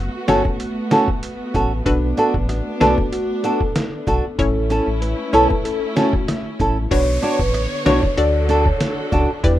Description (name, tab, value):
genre	dancehall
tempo	95 BPM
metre	4/4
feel	straight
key	B minor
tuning	A4 = 441 Hz
part	hollow square pluck	accompaniment	0.0-9.6 s	C#4 to D5	-22 LUFS	left 3 dB	chorus
part	warm studio string section	sustained chords	0.0-9.6 s	D3 to C#5	-26 LUFS	equal	sidechain pumping
part	sub bass with octave	bass	0.0-9.6 s	G1 to E2	-20 LUFS	equal	none
part	flamenco guitar	arpeggios	0.3-9.3 s	C#4 to C#5	-18 LUFS	right 1 dB	none
part	trip hop sampler-style drum kit	drums	0.3-9.6 s	crash cymbal, hi-hat, kick drum, rim click, snare drum	-22 LUFS	equal	none
part	soft struck synth lead	second line	1.9-6.9 s	D4 to B4	-26 LUFS	left 2 dB	chorus, tremolo, digital delay
part	marimba with medium mallets	melody	6.9-9.6 s	B4 to D5	-24 LUFS	right 1 dB	none
part	downlifter	sound effects	6.9-9.6 s	none	-33 LUFS	equal	none
room	light reverb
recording	rough home demo mix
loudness	-16 LUFS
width	side -13 dB against mid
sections	0.0-6.9 A section; 6.9-9.6 B section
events	none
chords	0.0 F#m; 1.9 Bm7; 4.4 A; 6.9 Bmadd9; 8.2 D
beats	0.60 1.23 | 1.86 2.49 3.12 3.75 | 4.39 5.02 5.65 6.28 | 6.91 7.54 8.18 8.81 | 9.44